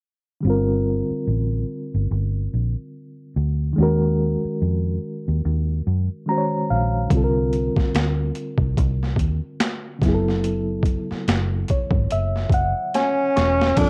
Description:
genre	R&B, neo-soul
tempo	72 BPM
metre	4/4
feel	swing 60% on 16ths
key	unclear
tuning	A4 = 440 Hz
part	reed electric piano	accompaniment	0.4-13.9 s	C#3 to C#6	-26 LUFS	equal	fast tremolo
part	vintage muted fingered electric bass	bass	0.4-13.9 s	E1 to Gb2	-24 LUFS	equal	none
part	boom bap sampler-style drum kit	drums	7.1-13.9 s	crash cymbal, handclaps, hi-hat, kick drum, snare drum	-25 LUFS	equal	overdrive
part	growling tenor saxophone	melody	12.9-13.9 s	C#4 to D4	-21 LUFS	equal	none
room	moderate studio reverb, RT60 0.5 s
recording	worn, warbling old tape, cassette tape, warbly pitch drift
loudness	-22 LUFS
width	mono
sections	0.4-13.8 A section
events	reed electric piano fill 5.9-7.1, 11.3-13.8; drum fill 12.9-13.8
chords	0.4 Gm7; 3.8 Ebm9; 7.1 C7sus2; 10.0 F#m9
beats	| 0.43 1.27 2.10 2.93 | 3.77 4.60 5.43 6.27 | 7.10 7.93 8.77 9.60 | 10.43 11.27 12.10 12.93 | 13.77

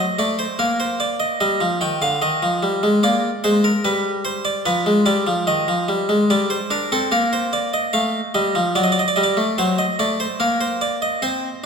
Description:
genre	classical, baroque-style two-part invention for harpsichord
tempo	73 BPM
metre	3/4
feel	straight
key	unclear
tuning	A4 = 440 Hz
part	harpsichord	solo	0.0-11.7 s	D3 to G5	-17 LUFS	equal	none
room	wet concert hall reverb, RT60 1.8 s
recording	none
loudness	-17 LUFS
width	side -6 dB against mid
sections	0.0-11.2 A section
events	none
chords	0.0 D7(no3); 0.6 Bbadd9; 1.4 Fm13; 3.0 Bb; 3.8 G7; 5.5 Ebadd9; 6.3 Gm; 7.9 F/A; 8.8 D7/F#; 10.4 Bbadd9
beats	0.59 | 1.41 2.22 3.03 | 3.85 4.66 5.47 | 6.29 7.12 7.93 | 8.75 9.57 10.39 | 11.22

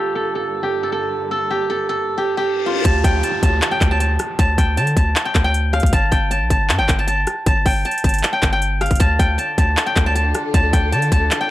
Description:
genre	hip hop, trap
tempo	156 BPM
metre	4/4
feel	half-time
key	D minor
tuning	A4 = 441 Hz
part	steel-string zither	melody	0.0-11.5 s	F4 to A5	-19 LUFS	right 1 dB	low-pass filter
part	dark chamber string section	sustained chords	0.0-2.8, 9.0-11.5 s	G2 to A4	-30 LUFS	left 2 dB	low-pass filter
part	reverse cymbal and downlifter	sound effects	2.4-5.9 s	none	-29 LUFS	left 3 dB	none
part	long sustained 808-style bass	bass	2.9-11.3 s	G1 to D3	-19 LUFS	equal	none
part	trap drum kit	drums	2.9-11.4 s	handclaps, hi-hat, kick drum, rim click	-18 LUFS	equal	overdrive
room	digital ambience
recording	dry, gritty hardware recording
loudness	-15 LUFS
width	side -15 dB against mid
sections	0.0-2.8 A section; 2.8-11.5 B section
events	reverse cymbal 2.4-2.8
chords	0.0 Gmadd9; 2.8 D5; 5.9 Gsus2; 9.0 Dm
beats	0.16 0.54 0.93 | 1.31 1.70 2.08 2.46 | 2.85 3.23 3.62 4.00 | 4.39 4.77 5.16 5.54 | 5.93 6.31 6.70 7.08 | 7.46 7.85 8.23 8.62 | 9.00 9.39 9.77 10.16 | 10.54 10.93 11.31

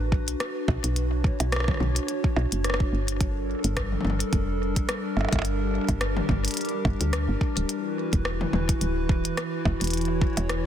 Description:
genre	IDM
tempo	107 BPM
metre	4/4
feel	swing 56% on 16ths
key	unclear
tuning	A4 = 440 Hz
part	warbly tape-like pad	sustained chords	0.0-10.7 s	E3 to C#5	-29 LUFS	equal	chorus, built-in reverb, shimmer reverb
part	woody FM bass	bass	0.0-10.7 s	D1 to D2	-27 LUFS	equal	none
part	electronic kick drum	drums	0.1-10.3 s	none	-26 LUFS	equal	none
part	glitchy drum kit	drums	0.3-10.6 s	hi-hat, percussion blips, rim click, toms	-31 LUFS	equal	soft clipping on snare, ping-pong delay
room	light reverb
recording	dense, heavily limited modern master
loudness	-23 LUFS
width	side -10 dB against mid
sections	0.0-10.7 A section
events	none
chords	0.0 Bm; 3.2 Gmadd9; 7.7 Esus2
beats	0.40 | 0.96 1.52 2.08 2.65 | 3.21 3.77 4.33 4.89 | 5.45 6.01 6.57 7.13 | 7.69 8.25 8.81 9.37 | 9.93 10.49

